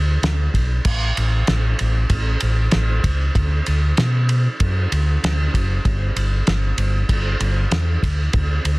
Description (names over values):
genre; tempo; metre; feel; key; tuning
folk rock and heartland rock; 96 BPM; 4/4; straight; unclear; A4 = 441 Hz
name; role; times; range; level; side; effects
fingered electric bass; bass; 0.0-8.8 s; F#1 to B2; -18 LUFS; equal; none
cloth-damped thuddy drum kit; drums; 0.2-8.8 s; crash cymbal, kick drum, ride cymbal, snare drum; -21 LUFS; equal; none
room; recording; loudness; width
little or no reverb; dense, heavily limited modern master; -17 LUFS; side -23 dB against mid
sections
0.0-8.8 A section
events
none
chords
none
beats
0.24 | 0.86 1.48 2.11 2.73 | 3.35 3.97 4.60 5.22 | 5.84 6.47 7.09 7.71 | 8.34